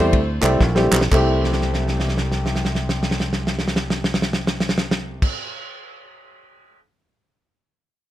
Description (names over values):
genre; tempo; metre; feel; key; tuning
uptempo gospel; 114 BPM; 4/4; swing 62% on 8ths; C major; A4 = 438 Hz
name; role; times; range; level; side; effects
clear saxophone section; melody; 0.0-0.6 s; E4 to C5; -30 LUFS; left 1 dB; slapback echo
clear grand piano; accompaniment; 0.0-5.3 s; C2 to G4; -23 LUFS; equal; none
fingered electric bass; bass; 0.0-5.3 s; Bb1 to E2; -23 LUFS; equal; none
warm soul drum kit; drums; 0.1-6.8 s; crash cymbal, kick drum, ride cymbal, snare drum; -22 LUFS; equal; none
group handclap; percussion; 0.4-5.3 s; none; -24 LUFS; right 2 dB; none
room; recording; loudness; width
small room ambience; rough home demo mix; -18 LUFS; side -13 dB against mid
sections
0.0-1.1 A section; 1.1-5.3 B section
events
slowing down 0.0-1.1; drum fill 0.6-1.1, 1.4-5.2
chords
0.0 C6